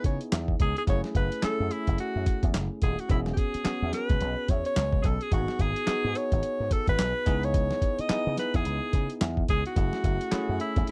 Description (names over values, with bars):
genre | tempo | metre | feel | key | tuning
R&B, new jack swing | 108 BPM | 4/4 | swing 60% on 16ths | unclear | A4 = 441 Hz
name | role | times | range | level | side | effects
bell-like tine electric piano | accompaniment | 0.0-10.9 s | A3 to G#4 | -36 LUFS | equal | none
slap bass with an envelope filter | bass | 0.0-10.9 s | D#1 to C#3 | -33 LUFS | equal | none
dusty soul sampler-style drum kit | drums | 0.0-10.9 s | handclaps, hi-hat, kick drum, snare drum | -30 LUFS | equal | none
bright alto saxophone | melody | 0.1-10.9 s | E4 to D#5 | -33 LUFS | equal | none
room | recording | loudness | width
little or no reverb | dry, close 1970s-style studio recording | -27 LUFS | mono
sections
0.0-10.9 A section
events
none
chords
0.0 C#m9; 0.9 F#m7; 3.1 E6; 5.3 G#m7; 7.3 C#m9; 9.8 F#m7